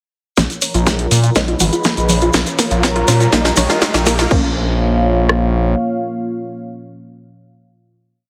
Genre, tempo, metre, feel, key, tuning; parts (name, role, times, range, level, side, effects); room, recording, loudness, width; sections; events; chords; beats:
melodic techno; 122 BPM; 4/4; straight; Bb phrygian; A4 = 440 Hz
dark analog pad; sustained chords; 0.4-7.9 s; Bb3 to Cb6; -23 LUFS; equal; chorus, sidechain pumping
tight sequenced synth; arpeggios; 0.4-4.5 s; Bb3 to Db5; -24 LUFS; equal; chorus, phaser, sidechain pumping, delay
filtered dub chord stab; stabs; 0.4-7.9 s; F3 to Eb4; -26 LUFS; equal; phaser, lush chorus, sidechain pumping, delay
gritty driven synth bass; bass; 0.4-5.7 s; Ab1 to Bb2; -19 LUFS; equal; tube saturation, sidechain pumping
techno drum kit; drums; 0.4-5.4 s; kick drum, rim click; -21 LUFS; equal; high-pass filter on kick, high-pass filter on snare, high-pass filter on room
techno drum kit; drums; 0.4-4.4 s; congas, crash cymbal, hi-hat, snare drum; -21 LUFS; equal; sidechain pumping on hats, sidechain pumping on perc, sidechain pumping on cymbals
shekere; percussion; 0.4-4.3 s; -25 LUFS; equal
riser; sound effects; 1.6-4.3 s; -30 LUFS; equal
light reverb; heavily compressed radio sound; -15 LUFS; mono
0.4-4.3 build; 4.3-8.2 final chord
build-up 0.4-4.3; drum fill 0.4-4.3; filter sweep on synth arpeggio sound 0.4-4.3; filter sweep on synth stab 0.4-4.3
0.4 Bbm; 1.4 Abm; 2.3 Bbm; 3.3 Eb/Bb; 4.3 Bbm
| 0.38 0.87 1.36 1.85 | 2.34 2.83 3.33 3.82 | 4.31 4.80 5.29 5.79 | 6.28 6.77 7.26 7.75